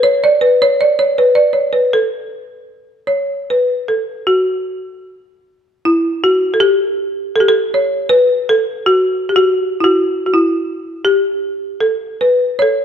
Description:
celtic folk; 72-84 BPM; 3/4; rubato; A mixolydian; A4 = 442 Hz
folk marimba with hard mallets; solo; 0.0-12.8 s; E4 to D5; -12 LUFS; equal
moderate scoring stage reverb, RT60 1.7 s; dark, warm production; -12 LUFS; side -8 dB against mid
0.0-4.3 A section; 4.3-12.8 B section

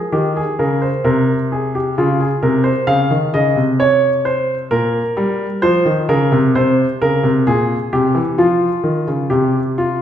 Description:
classical, baroque-style two-part invention for grand piano; 65 BPM; 4/4; straight; A4 = 440 Hz
warm baby grand piano; solo; 0.0-10.0 s; Bb2 to F5; -14 LUFS; equal
wet recital hall reverb, RT60 1.4 s; heard from further back in the room; -14 LUFS; side -10 dB against mid
0.0-10.0 A section
0.0 Ab; 1.1 Fm/C (rootless); 2.9 Cmadd11; 4.7 Gdim/Bb; 6.5 C7; 8.4 Dbadd9; 9.3 C5

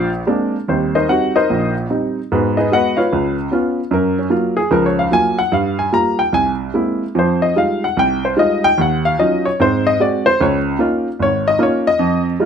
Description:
solo jazz; 148 BPM; 4/4; swing 65% on 8ths, rubato; A4 = 440 Hz
warm upright piano; solo; 0.0-12.5 s; Ab1 to Bb5; -14 LUFS; equal
light reverb; -14 LUFS; side -7 dB against mid
0.7-12.5 A section
upright piano solo 0.0-12.5
0.0 Bb9; 0.7 Eb6; 2.3 Abm7; 3.1 Db7; 3.9 Gbmaj7; 5.5 Gm7; 6.3 Caug7; 7.2 Fm9; 8.8 Ebm9; 9.6 Ab7; 10.4 Db69

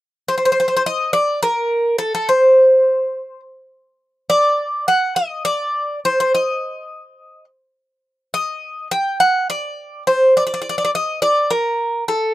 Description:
greek folk; 208 BPM (eighths); 7/8; straight; D phrygian dominant; A4 = 440 Hz
Greek bouzouki; solo; 0.3-12.3 s; A4 to G5; -15 LUFS; equal
little or no reverb; dry, close 1970s-style studio recording; -15 LUFS; side -16 dB against mid
0.3-12.3 A section

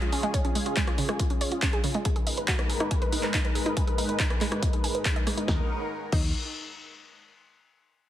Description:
uplifting trance; 140 BPM; 4/4; straight; A4 = 440 Hz
lush unison pad; sustained chords; 0.0-5.7 s; Ab3 to Gb5; -32 LUFS; equal; chorus, phaser, sidechain pumping
wide unison pluck; arpeggios; 0.0-6.3 s; Db3 to Ab5; -32 LUFS; right 3 dB; auto-pan, sidechain pumping, digital delay
punchy analog drum machine; drums; 0.0-6.2 s; crash cymbal, handclaps, hi-hat, rim click, snare drum; -31 LUFS; equal; overdrive, sidechain pumping on hats, sidechain pumping on cymbals
electronic kick drum; drums; 0.3-6.2 s; -27 LUFS; equal
solid FM bass; bass; 5.5-6.3 s; Eb2; -31 LUFS; equal; sidechain pumping
light reverb; heavily compressed radio sound; -24 LUFS; side -12 dB against mid
0.0-5.5 A section; 5.5-7.2 B section
filter sweep on analog synth pad 0.0-5.5
0.0 Db; 2.1 Abmadd9; 5.5 Ebm7

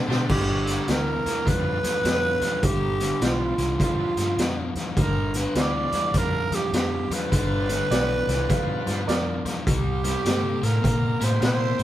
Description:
electric blues shuffle; 102 BPM; 4/4; swing 63% on 8ths; G mixolydian; A4 = 440 Hz
bright tonewheel organ; accompaniment; 0.0-11.8 s; D3 to D5; -36 LUFS; right 3 dB; slow rotary speaker, overdrive
overdriven semi-hollow guitar; riff; 0.0-11.8 s; G2 to C4; -29 LUFS; left 4 dB
vintage muted fingered electric bass; bass; 0.1-11.8 s; G1 to B2; -28 LUFS; equal
raw garage drum kit; drums; 0.1-11.8 s; crash cymbal, hi-hat, kick drum, snare drum; -26 LUFS; equal
growling tenor saxophone; melody; 0.3-11.8 s; F4 to D5; -26 LUFS; right 2 dB
bright upright piano; second line; 7.9-9.5 s; Bb4 to F5; -31 LUFS; right 4 dB
moderate studio reverb, RT60 0.5 s; band playing live in one room; -21 LUFS; side -13 dB against mid
0.3-11.8 A section
drum fill 0.0
0.3 G7; 9.7 C7

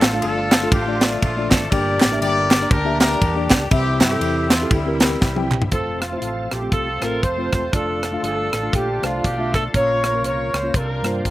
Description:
uptempo gospel; 120 BPM; 4/4; swing 59% on 8ths; F major; A4 = 440 Hz
clear horn section; melody; 0.0-11.3 s; G3 to D5; -24 LUFS; left 2 dB; slapback echo
mellow tine electric piano; accompaniment; 0.0-11.3 s; G2 to G5; -25 LUFS; left 1 dB; medium stereo tremolo, slapback echo
bright tonewheel organ; sustained chords; 0.0-11.3 s; Bb2 to Bb4; -31 LUFS; right 2 dB; slow rotary speaker, overdrive, chorus vibrato
fingered electric bass; bass; 0.0-11.3 s; E1 to G2; -26 LUFS; equal
crisp fusion drum kit; drums; 0.0-11.3 s; hi-hat, kick drum, ride cymbal, rim click, snare drum, toms; -18 LUFS; equal
group handclap; percussion; 0.0-5.6 s; -27 LUFS; right 6 dB
warm alto saxophone; melody; 5.7-11.3 s; E4 to Db5; -24 LUFS; right 2 dB; slapback echo
little or no reverb; recorded outdoors, with no room sound; -17 LUFS; side -16 dB against mid
0.0-5.7 A section; 5.7-11.3 B section
drum fill 5.2-5.7
0.0 Dm; 1.7 Gm; 3.7 C; 5.7 F; 7.7 Dm/F; 9.7 Bbm; 10.7 C9sus4

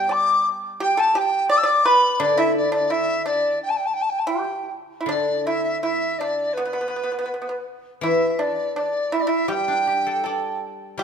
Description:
chinese traditional, Chinese chamber ensemble; 80-86 BPM; 2/4; rubato; G gong mode; A4 = 439 Hz
mellow hollow dizi; melody; 0.0-11.0 s; B4 to E6; -21 LUFS; left 1 dB
pipa; second line; 0.0-11.0 s; B3 to D5; -24 LUFS; right 3 dB
guzheng; accompaniment; 0.0-11.0 s; D3 to D5; -28 LUFS; left 5 dB
moderate concert hall reverb, RT60 1.9 s; -19 LUFS; side -7 dB against mid
0.0-5.1 A section; 5.1-11.0 B section

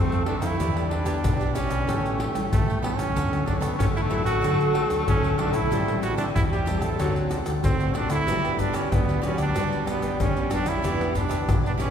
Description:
samba and choro; 94 BPM; 4/4; straight; D major; A4 = 440 Hz
brilliant trombone; melody; 0.0-11.9 s; A3 to A4; -28 LUFS; right 3 dB
breathy tenor saxophone; second line; 0.0-11.8 s; E3 to B3; -30 LUFS; left 1 dB
cavaquinho; accompaniment; 0.0-11.9 s; D4 to A5; -36 LUFS; right 3 dB
nylon-string guitar; accompaniment; 0.0-11.9 s; G2 to G4; -33 LUFS; left 2 dB
hollow-body short-scale fingered electric bass; bass; 0.0-11.9 s; E1 to D3; -29 LUFS; equal
tube shaker, pandeiro, tamborim and surdo; percussion; 0.1-11.9 s; -26 LUFS; left 1 dB
wet church reverb, RT60 3.2 s; recorded in a church or concert hall; -22 LUFS; side -8 dB against mid
0.0-11.9 A section
0.0 Fmaj7; 0.6 Em7; 1.9 A7; 3.2 Dmaj7; 5.7 Am7; 7.0 D7; 8.3 Gmaj7; 10.8 Em7

